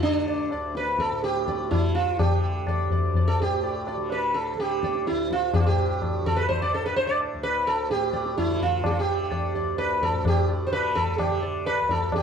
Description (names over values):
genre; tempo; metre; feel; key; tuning
indian classical, Hindustani; 126 BPM; 7/4; straight; D raga bhimpalasi; A4 = 440 Hz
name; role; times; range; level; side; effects
sitar; melody; 0.0-12.2 s; D4 to D5; -24 LUFS; right 2 dB; plate reverb
tanpura; drone; 0.0-12.2 s; D2 to D3; -34 LUFS; equal; none
tabla; percussion; 0.3-12.2 s; none; -27 LUFS; left 2 dB; none
room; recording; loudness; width
moderate studio reverb, RT60 0.5 s; dark, warm production; -22 LUFS; side -7 dB against mid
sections
0.0-12.1 A section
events
speeding up 0.0-12.2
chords
none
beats
0.28 0.76 1.24 1.72 | 2.20 2.68 3.16 3.64 4.11 4.59 5.07 | 5.54 6.02 6.49 6.96 7.44 7.91 8.38 | 8.85 9.32 9.79 10.26 10.73 11.20 11.66 | 12.13